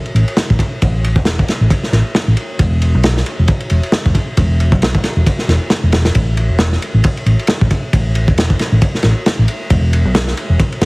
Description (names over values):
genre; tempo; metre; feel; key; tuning
breakbeat, breaks; 135 BPM; 4/4; swing 57% on 16ths; unclear; A4 = 440 Hz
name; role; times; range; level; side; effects
hollow-body short-scale fingered electric bass; bass; 0.1-10.9 s; E1 to B1; -13 LUFS; equal; none
crunchy breakbeat drum kit; drums; 0.1-10.9 s; kick drum, ride cymbal, snare drum; -15 LUFS; equal; none
room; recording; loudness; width
little or no reverb; heavily compressed radio sound, vinyl crackle; -12 LUFS; side -30 dB against mid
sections
0.0-10.9 A section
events
none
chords
none